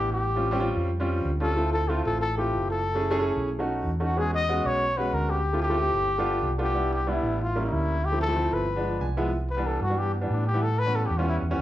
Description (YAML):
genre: jazz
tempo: 186 BPM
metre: 4/4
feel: straight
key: C major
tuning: A4 = 439 Hz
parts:
  - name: breathy trumpet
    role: melody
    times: 0.0-11.4 s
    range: B3 to Eb5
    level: -27 LUFS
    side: left 2 dB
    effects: none
  - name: warm concert grand piano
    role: accompaniment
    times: 0.0-11.6 s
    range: E3 to Ab5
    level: -28 LUFS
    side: equal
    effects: none
  - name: fingered electric bass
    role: bass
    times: 0.0-11.6 s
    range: F#1 to A2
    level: -28 LUFS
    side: equal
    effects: none
room: moderate large studio reverb, RT60 0.8 s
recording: band playing live in one room, nothing above 10.3 kHz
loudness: -23 LUFS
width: side -14 dB against mid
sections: 0.0-9.3 A section; 9.3-11.6 B section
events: grand piano fill 8.8-9.3; trumpet solo 9.3-11.6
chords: 0.3 A7alt; 1.6 Dm7; 2.9 F#m9; 3.5 B7; 4.2 E69; 5.5 Dm7; 6.1 G9; 6.8 Cmaj9; 7.4 A7b9; 8.0 Dm9; 8.7 G7b9; 9.3 Cmaj7; 10.6 A7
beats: | 0.28 0.60 0.92 1.25 | 1.57 1.90 2.22 2.55 | 2.87 3.19 3.52 3.84 | 4.17 4.49 4.81 5.14 | 5.46 5.78 6.11 6.43 | 6.75 7.07 7.40 7.72 | 8.04 8.36 8.69 9.01 | 9.33 9.65 9.98 10.30 | 10.62 10.95 11.27 11.59